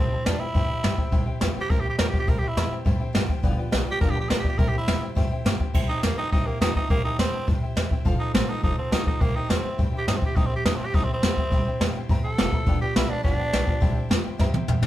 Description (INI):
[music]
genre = rockabilly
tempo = 208 BPM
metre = 4/4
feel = straight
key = C major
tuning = A4 = 440 Hz
[part]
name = growling tenor saxophone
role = melody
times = 0.0-14.1 s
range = Bb3 to Bb4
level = -28 LUFS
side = right 1 dB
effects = none
[part]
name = picked steel-string acoustic guitar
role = accompaniment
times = 0.0-14.9 s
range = G2 to A4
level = -37 LUFS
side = left 2 dB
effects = none
[part]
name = tack piano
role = accompaniment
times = 0.0-14.9 s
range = B4 to Bb5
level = -37 LUFS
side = left 3 dB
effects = none
[part]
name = upright bass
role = bass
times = 0.0-14.9 s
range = F1 to G2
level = -28 LUFS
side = equal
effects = none
[part]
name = jazz brush drum kit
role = drums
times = 0.3-14.9 s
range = crash cymbal, hi-hat, kick drum, snare drum, toms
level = -23 LUFS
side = equal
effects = none
[sound]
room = moderate studio reverb, RT60 0.8 s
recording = band playing live in one room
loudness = -21 LUFS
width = side -14 dB against mid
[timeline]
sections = 0.0-5.7 A section; 5.7-14.9 A section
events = tenor saxophone solo 0.0-14.9; drum fill 14.4-14.9; honky-tonk piano fill 14.4-14.9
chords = 0.0 C; 3.4 G7; 4.6 C; 8.1 F; 9.2 C; 12.7 G7; 13.8 C